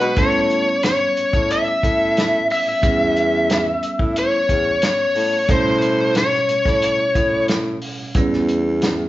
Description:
straight-eighth soul blues; 90 BPM; 4/4; straight; A mixolydian; A4 = 440 Hz
biting lead guitar; melody; 0.0-7.5 s; B4 to E5; -18 LUFS; left 1 dB; overdrive
bell-like tine electric piano; accompaniment; 0.0-9.1 s; B2 to F#5; -26 LUFS; right 4 dB
growling baritone saxophone; bass; 0.0-9.1 s; E2 to B2; -22 LUFS; equal
warm soul drum kit; drums; 0.0-9.0 s; hi-hat, kick drum, snare drum; -22 LUFS; equal
moderate large studio reverb, RT60 1.0 s; band playing live in one room, nothing above 7.7 kHz; -16 LUFS; side -15 dB against mid
0.2-9.1 A section
tine electric piano fill 0.0
0.2 A9
| 0.17 0.83 1.50 2.16 | 2.83 3.50 4.16 4.83 | 5.49 6.16 6.82 7.49 | 8.15 8.82

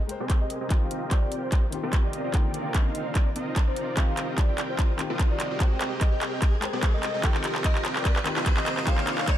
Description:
future bass; 147 BPM; 4/4; swing 54% on 16ths, half-time; Eb major; A4 = 440 Hz
warm velvety synth lead; melody; 0.0-9.4 s; C5 to G5; -35 LUFS; equal; chorus, sidechain pumping, digital delay
warm grand piano; accompaniment; 0.0-9.4 s; D3 to G5; -36 LUFS; left 4 dB; sidechain pumping
dense compressed supersaw; riff; 0.0-9.4 s; C4 to G5; -33 LUFS; right 1 dB; sidechain pumping, low-pass filter
riser; sound effects; 0.0-9.4 s; -37 LUFS; equal
trap drum kit; drums; 0.1-9.4 s; handclaps, hi-hat; -30 LUFS; equal; high-pass filter on hats, high-pass filter on snare
electronic kick drum; drums; 0.3-9.4 s; -23 LUFS; equal
digital ambience; dark, warm production; -23 LUFS; side -12 dB against mid
0.0-9.4 A section
build-up 0.0-9.4; drum fill 0.0-9.4; riser 0.0-9.4; filter sweep on supersaw synth 0.0-9.4; filter sweep on soft synth lead 0.0-9.4
0.0 Abmaj9; 0.7 Eb69; 2.3 Cm11; 4.0 Eb69; 5.6 Abmaj9; 7.2 Eb69; 8.9 Cm11
0.30 | 0.70 1.11 1.52 1.93 | 2.34 2.75 3.15 3.56 | 3.97 4.38 4.79 5.20 | 5.60 6.01 6.42 6.83 | 7.24 7.64 8.05 8.46 | 8.87 9.28

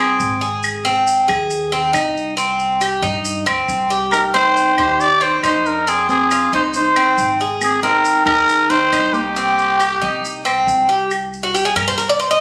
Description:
latin, Cuban son and guajira; 137 BPM; 4/4; straight; C minor; A4 = 438 Hz
trumpet with cup mute; melody; 0.0-0.4, 4.1-10.7 s; G4 to D5; -18 LUFS; equal
nylon-string guitar; second line; 0.0-0.4, 4.1-10.7 s; Bb3 to G4; -27 LUFS; equal
Cuban tres; arpeggios; 0.0-12.4 s; C4 to Eb5; -20 LUFS; equal
upright bass; bass; 0.0-12.4 s; Ab1 to G2; -33 LUFS; equal
maracas; percussion; 0.2-12.4 s; -32 LUFS; equal
claves; percussion; 0.6-12.0 s; -26 LUFS; equal
light reverb; recorded on a phone in the room, studio reverb, compression; -16 LUFS; mono
0.0-11.1 A section; 11.1-12.4 B section
Cuban tres solo 11.1-12.4
0.0 Fm (rootless); 0.6 Ab; 2.4 Cm; 5.9 Fm7; 7.6 Ab; 9.4 Cm7; 11.1 C5
0.20 | 0.64 1.07 1.51 1.94 | 2.38 2.81 3.25 3.69 | 4.12 4.56 4.99 5.43 | 5.87 6.30 6.74 7.18 | 7.62 8.05 8.49 8.93 | 9.36 9.80 10.24 10.68 | 11.11 11.55 11.99

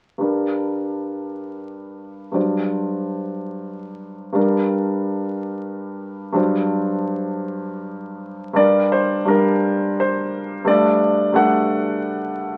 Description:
classical, romantic character piece for solo piano; 75-93 BPM; 3/4; rubato; G minor; A4 = 443 Hz
clear concert grand piano; solo; 0.2-12.6 s; G2 to F#5; -21 LUFS; equal
moderate large studio reverb, RT60 0.9 s; very old 78 rpm record, vinyl crackle; -20 LUFS; mono
0.2-8.6 A section; 8.6-12.6 B section
0.2 Gm; 2.4 D7/G; 4.4 Gm; 6.4 D7/G; 8.6 Gm; 10.7 D/G
| 0.23 0.95 1.65 | 2.36 3.04 3.71 | 4.36 5.02 5.69 | 6.37 7.08 7.81 | 8.58 9.30 10.02 | 10.69 11.36 12.02

